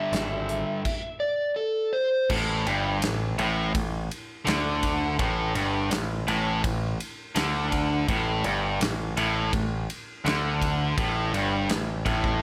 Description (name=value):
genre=blues rock power trio and southern rock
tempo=83 BPM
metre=4/4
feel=straight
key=unclear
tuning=A4 = 440 Hz
part: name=overdriven slide guitar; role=melody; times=0.0-2.3 s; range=A4 to E5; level=-29 LUFS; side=equal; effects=none
part: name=distorted electric guitar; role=riff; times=0.0-12.4 s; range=G2 to G3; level=-29 LUFS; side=equal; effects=overdrive
part: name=growling picked electric bass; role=bass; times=0.1-12.4 s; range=G1 to D2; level=-32 LUFS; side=equal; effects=overdrive
part: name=big rock drum kit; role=drums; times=0.1-12.4 s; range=crash cymbal, hi-hat, kick drum, ride cymbal, snare drum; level=-33 LUFS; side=equal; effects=none
room=moderate club reverb, RT60 0.7 s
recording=none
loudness=-27 LUFS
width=mono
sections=0.0-2.3 A section; 2.3-12.4 B section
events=none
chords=0.0 G5; 2.3 Gsus2